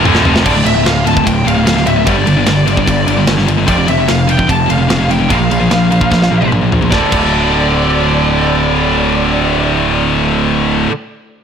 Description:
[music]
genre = heavy metal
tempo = 148 BPM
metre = 4/4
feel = straight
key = D minor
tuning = A4 = 439 Hz
[part]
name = high-gain distorted guitar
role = riff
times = 0.0-10.9 s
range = D2 to Bb3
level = -16 LUFS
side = right 12 dB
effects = distortion
[part]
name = scooped high-gain guitar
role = riff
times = 0.0-10.9 s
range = D2 to Bb3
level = -15 LUFS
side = left 9 dB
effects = distortion
[part]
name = fuzz picked electric bass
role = bass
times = 0.0-10.9 s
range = D1 to Bb1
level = -16 LUFS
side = equal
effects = overdrive
[part]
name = tight metal drum kit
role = drums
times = 0.1-7.2 s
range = crash cymbal, kick drum, ride cymbal, snare drum, toms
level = -17 LUFS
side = equal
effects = soft clipping on kick, soft clipping on snare
[part]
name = high-gain lead guitar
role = melody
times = 0.5-10.8 s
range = D5 to A5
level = -17 LUFS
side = left 1 dB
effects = distortion
[sound]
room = small room ambience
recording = blown-out, overdriven recording, overdrive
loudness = -10 LUFS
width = side -7 dB against mid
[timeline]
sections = 0.4-6.9 A section; 6.9-10.1 B section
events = drum fill 0.0-0.4, 6.1-6.9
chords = 0.0 Dm; 2.1 G5; 3.7 F5; 5.3 Bb5; 6.9 D5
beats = 0.04 | 0.45 0.85 1.25 1.66 | 2.06 2.46 2.87 3.27 | 3.68 4.08 4.49 4.89 | 5.29 5.70 6.10 6.51 | 6.91 7.32 7.72 8.12 | 8.53 8.93 9.34 9.74

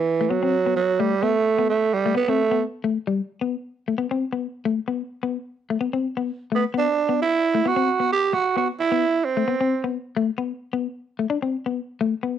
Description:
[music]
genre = highlife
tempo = 131 BPM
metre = 4/4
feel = swing 54% on 16ths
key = unclear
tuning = A4 = 440 Hz
[part]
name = growling tenor saxophone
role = melody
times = 0.0-2.6, 6.5-9.9 s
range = E3 to G4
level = -20 LUFS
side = right 5 dB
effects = cassette tape
[part]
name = clean electric guitar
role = accompaniment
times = 0.2-12.4 s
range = G3 to D4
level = -24 LUFS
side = left 7 dB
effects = cassette tape
[sound]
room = wet studio reverb, RT60 0.6 s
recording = home recording on cassette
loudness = -21 LUFS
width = side -9 dB against mid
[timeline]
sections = 0.0-6.5 A section; 6.5-12.4 B section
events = none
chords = 0.1 Am69/E; 2.8 G; 3.8 Amadd9; 6.5 Asus24; 7.4 Am69 (rootless); 10.2 Asus2; 11.1 D5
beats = 0.08 0.54 | 1.00 1.46 1.92 2.38 | 2.84 3.30 3.75 4.21 | 4.67 5.13 5.59 6.05 | 6.51 6.97 7.42 7.88 | 8.34 8.80 9.25 9.71 | 10.17 10.62 11.08 11.54 | 11.99

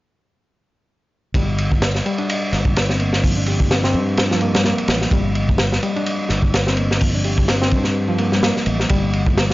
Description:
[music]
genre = breakbeat, breaks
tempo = 127 BPM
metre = 4/4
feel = swing 56% on 16ths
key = G minor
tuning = A4 = 441 Hz
[part]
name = fingered electric bass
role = bass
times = 1.3-9.5 s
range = G1 to G2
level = -21 LUFS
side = equal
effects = none
[part]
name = crunchy breakbeat drum kit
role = drums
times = 1.3-9.5 s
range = hi-hat, kick drum, ride cymbal, snare drum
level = -19 LUFS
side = equal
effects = none
[part]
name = reed electric piano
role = riff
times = 1.4-9.5 s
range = F3 to G4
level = -22 LUFS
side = left 1 dB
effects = digital delay
[sound]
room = light reverb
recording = nothing above 7.4 kHz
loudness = -16 LUFS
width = side -18 dB against mid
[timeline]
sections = 1.3-9.5 A section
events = none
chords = 1.3 Gm7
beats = | 1.34 1.82 2.29 2.76 | 3.23 3.71 4.18 4.65 | 5.12 5.60 6.07 6.54 | 7.01 7.49 7.96 8.43 | 8.90 9.38

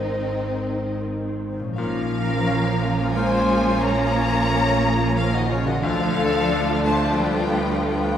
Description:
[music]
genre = cinematic, emotional film score for orchestra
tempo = 88 BPM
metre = 3/4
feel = uneven beats, rubato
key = Bb minor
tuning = A4 = 439 Hz
[part]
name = warm studio violin section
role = melody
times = 0.0-8.2 s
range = Db5 to Bb5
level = -27 LUFS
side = left 2 dB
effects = none
[part]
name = warm studio violin section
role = second line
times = 0.0-8.2 s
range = C4 to F4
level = -30 LUFS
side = left 2 dB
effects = none
[part]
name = bright grand piano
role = accompaniment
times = 0.0-8.2 s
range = D2 to C5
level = -32 LUFS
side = left 3 dB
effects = none
[part]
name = rich studio viola section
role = accompaniment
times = 0.0-8.2 s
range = Eb3 to C4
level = -28 LUFS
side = equal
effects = none
[part]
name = mellow French horn section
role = sustained chords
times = 0.0-8.2 s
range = Eb3 to C5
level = -28 LUFS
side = equal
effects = none
[part]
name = concert harp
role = arpeggios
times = 0.0-8.2 s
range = Ab2 to Eb5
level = -34 LUFS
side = left 3 dB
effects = none
[part]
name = rich studio cello section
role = bass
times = 0.0-8.2 s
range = Db3 to Eb4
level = -28 LUFS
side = right 2 dB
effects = none
[part]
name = warm studio double bass section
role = bass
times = 0.0-8.2 s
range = Ab1 to D2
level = -26 LUFS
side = right 2 dB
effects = none
[part]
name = flute section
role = second line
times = 1.8-8.2 s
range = F4 to Db5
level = -26 LUFS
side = left 1 dB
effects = none
[sound]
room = wet scoring stage reverb, RT60 1.7 s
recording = heard from further back in the room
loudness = -19 LUFS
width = side -9 dB against mid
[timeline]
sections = 0.0-1.8 A section; 1.8-8.2 B section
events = none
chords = 0.0 Ab; 1.8 Bbm; 5.8 Dm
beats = 0.29 1.04 | 1.77 2.47 3.15 | 3.83 4.50 5.16 | 5.83 6.51 7.20 | 7.90

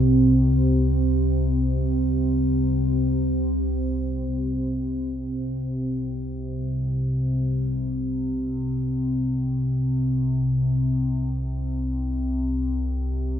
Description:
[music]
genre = dark ambient drone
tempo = free time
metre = none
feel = none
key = unclear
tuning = A4 = 438 Hz
[part]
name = deep dark ambient pad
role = sustained chords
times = 0.0-4.3 s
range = C4 to C5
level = -26 LUFS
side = right 3 dB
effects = chorus, built-in reverb
[part]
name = analog drone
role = drone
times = 0.0-13.4 s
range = C2 to C3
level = -22 LUFS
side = left 1 dB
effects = chorus
[sound]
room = wet huge ambient reverb, RT60 7.8 s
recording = dark, warm production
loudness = -22 LUFS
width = side -9 dB against mid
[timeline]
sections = 0.0-4.3 A section; 4.3-13.4 B section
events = none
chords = 0.0 C5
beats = free time

